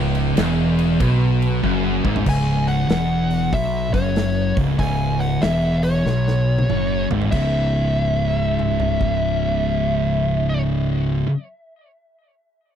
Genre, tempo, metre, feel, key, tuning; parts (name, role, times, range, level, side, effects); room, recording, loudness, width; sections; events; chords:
stoner and doom metal; 95 BPM; 4/4; swing 65% on 8ths; C# minor; A4 = 440 Hz
high-gain distorted guitar; riff; 0.0-2.3 s; C#2 to B2; -25 LUFS; equal; distortion
thick fuzz guitar; riff; 0.0-11.3 s; C#2 to C#3; -22 LUFS; left 8 dB; distortion
thick fuzz guitar; riff; 0.0-11.3 s; C#2 to C#3; -23 LUFS; right 10 dB; distortion
growling fingered electric bass; bass; 0.0-11.2 s; C#1 to B1; -25 LUFS; equal; overdrive
big rock drum kit; drums; 0.1-9.1 s; crash cymbal, hi-hat, kick drum, snare drum, toms; -25 LUFS; equal
fuzz lead guitar; melody; 2.3-10.6 s; C#5 to G#5; -24 LUFS; equal; distortion, tape echo
little or no reverb; dry, close 1970s-style studio recording; -17 LUFS; side -9 dB against mid
0.0-2.3 A section; 2.3-7.3 B section; 7.3-9.9 C section
drum fill 1.6-2.3, 6.1-7.3
0.0 C#m